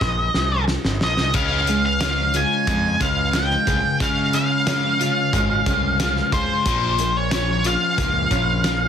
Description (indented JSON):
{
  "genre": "quiet-loud alternative rock",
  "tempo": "90 BPM",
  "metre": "4/4",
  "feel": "straight",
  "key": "unclear",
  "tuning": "A4 = 442 Hz",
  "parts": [
    { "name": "octave-fuzz lead guitar", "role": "melody", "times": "0.0-8.9 s", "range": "C5 to Ab5", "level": "-21 LUFS", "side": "equal", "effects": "distortion, tape echo" },
    { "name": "growling picked electric bass", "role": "bass", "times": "0.0-8.9 s", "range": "G1 to Db3", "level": "-24 LUFS", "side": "equal", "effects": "overdrive" },
    { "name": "loose indie drum kit", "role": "drums", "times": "0.0-8.8 s", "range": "hi-hat, kick drum, snare drum", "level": "-25 LUFS", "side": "equal", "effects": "none" },
    { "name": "high-gain distorted guitar", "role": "riff", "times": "1.3-8.9 s", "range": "Bb2 to Db4", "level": "-25 LUFS", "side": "left 11 dB", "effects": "distortion" },
    { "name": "fingerpicked steel-string acoustic guitar", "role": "arpeggios", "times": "1.4-8.9 s", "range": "Bb2 to Ab4", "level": "-29 LUFS", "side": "right 7 dB", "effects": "none" }
  ],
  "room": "light reverb",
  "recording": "dense, heavily limited modern master",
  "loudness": "-18 LUFS",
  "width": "side -8 dB against mid",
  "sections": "0.0-8.9 A section",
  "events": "drum fill 0.0-1.3",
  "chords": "0.0 Eb5; 1.3 Db; 6.7 Bbm"
}